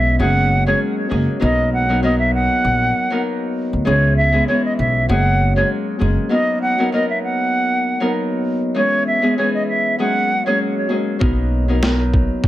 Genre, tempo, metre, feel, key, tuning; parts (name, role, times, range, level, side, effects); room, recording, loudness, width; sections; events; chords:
hip hop, boom-bap hip-hop; 98 BPM; 4/4; swing 54% on 16ths; B major; A4 = 442 Hz
silver concert flute; melody; 0.0-10.6 s; C#5 to F#5; -18 LUFS; right 1 dB; high-pass filter, low-pass filter, digital delay
Celtic harp; accompaniment; 0.0-12.5 s; E3 to A#4; -19 LUFS; left 1 dB; high-pass filter, low-pass filter
upright bass; bass; 0.0-6.2, 11.2-12.5 s; F#1 to D2; -18 LUFS; equal
boom bap sampler-style drum kit; drums; 11.2-12.5 s; kick drum, snare drum; -18 LUFS; equal
light reverb; -15 LUFS; side -14 dB against mid
0.0-12.5 A section
hi-hats muted 11.2-12.5
0.2 F#add9; 1.4 Bmaj7; 3.9 C#m7; 5.1 F#add9; 6.3 Bmaj7; 8.8 C#m7; 10.0 F#add9; 11.2 Bmaj7